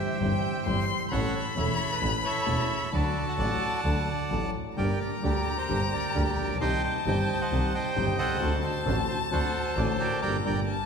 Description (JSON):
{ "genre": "tango", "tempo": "132 BPM", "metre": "4/4", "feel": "rubato", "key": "G harmonic minor", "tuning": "A4 = 440 Hz", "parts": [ { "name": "bandoneon", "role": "melody", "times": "0.0-10.6 s", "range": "E4 to C6", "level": "-31 LUFS", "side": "right 2 dB", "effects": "none" }, { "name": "warm violin", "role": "second line", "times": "0.0-10.9 s", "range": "E5 to C6", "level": "-33 LUFS", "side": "left 6 dB", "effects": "none" }, { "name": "warm grand piano", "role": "accompaniment", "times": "0.2-10.6 s", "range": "E1 to A4", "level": "-31 LUFS", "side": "left 2 dB", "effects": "none" }, { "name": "rich double bass", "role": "bass", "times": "0.2-10.6 s", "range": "E1 to D2", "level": "-30 LUFS", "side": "right 1 dB", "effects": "none" }, { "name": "bandoneon", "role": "stabs", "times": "4.8-10.6 s", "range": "D4 to C5", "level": "-39 LUFS", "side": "right 5 dB", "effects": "none" } ], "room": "wet concert hall reverb, RT60 2.1 s", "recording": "recorded in a church or concert hall", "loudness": "-25 LUFS", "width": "side -6 dB against mid", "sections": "0.0-10.9 A section", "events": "band accent 10.2-10.9", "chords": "0.0 C/G; 1.1 A; 2.9 D; 4.8 Gm; 6.6 Cm; 8.4 D7; 10.2 Gm" }